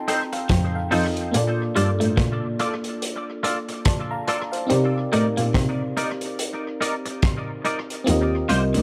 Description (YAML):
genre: lovers rock reggae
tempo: 71 BPM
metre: 4/4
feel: swing 59% on 16ths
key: Bb major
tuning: A4 = 440 Hz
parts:
  - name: FM electric piano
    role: accompaniment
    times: 0.0-8.8 s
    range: Bb3 to C6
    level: -29 LUFS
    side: equal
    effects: chorus
  - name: twangy electric guitar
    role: stabs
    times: 0.1-8.6 s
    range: Eb4 to D5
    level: -30 LUFS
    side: equal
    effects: ensemble chorus, tape echo
  - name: vintage drum kit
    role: drums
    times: 0.1-8.8 s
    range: hi-hat, kick drum, rim click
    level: -28 LUFS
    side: equal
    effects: tape echo
  - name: electric guitar through a small old amp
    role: riff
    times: 0.5-8.8 s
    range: C3 to C4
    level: -30 LUFS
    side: equal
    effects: none
  - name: muted cello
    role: bass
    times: 0.5-8.8 s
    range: C2 to C3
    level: -25 LUFS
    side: equal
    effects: none
room: light reverb, small room ambience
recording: none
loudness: -23 LUFS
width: mono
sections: 0.0-8.8 A section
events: FM electric piano fill 0.0-1.3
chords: 0.0 F7; 1.3 Bbmaj7; 4.7 Cm9; 8.1 Eb69